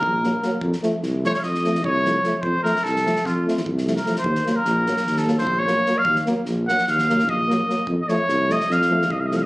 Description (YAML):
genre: balkan folk, Balkan brass band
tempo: 298 BPM (eighths)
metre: 9/8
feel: straight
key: unclear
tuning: A4 = 439 Hz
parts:
  - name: clear trumpet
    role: melody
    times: 0.0-9.5 s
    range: F4 to Gb5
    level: -21 LUFS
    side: equal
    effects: none
  - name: mellow tuba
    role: bass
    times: 0.0-9.4 s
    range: Bb1 to F2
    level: -23 LUFS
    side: equal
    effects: none
  - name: loose indie drum kit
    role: percussion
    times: 0.0-9.4 s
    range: kick drum, snare drum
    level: -34 LUFS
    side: equal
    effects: none
  - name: dark euphonium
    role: accompaniment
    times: 0.2-9.4 s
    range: F3 to Gb3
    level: -30 LUFS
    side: right 1 dB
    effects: none
  - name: mellow trombone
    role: accompaniment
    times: 0.2-9.4 s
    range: A3 to Bb3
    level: -26 LUFS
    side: equal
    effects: none
room: light reverb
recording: recorded on a phone in the room, club reverb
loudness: -18 LUFS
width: side -20 dB against mid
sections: 0.0-9.5 A section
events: trumpet solo 0.0-9.5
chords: 0.0 Ebm (rootless); 0.6 F; 4.2 Ebm; 7.9 F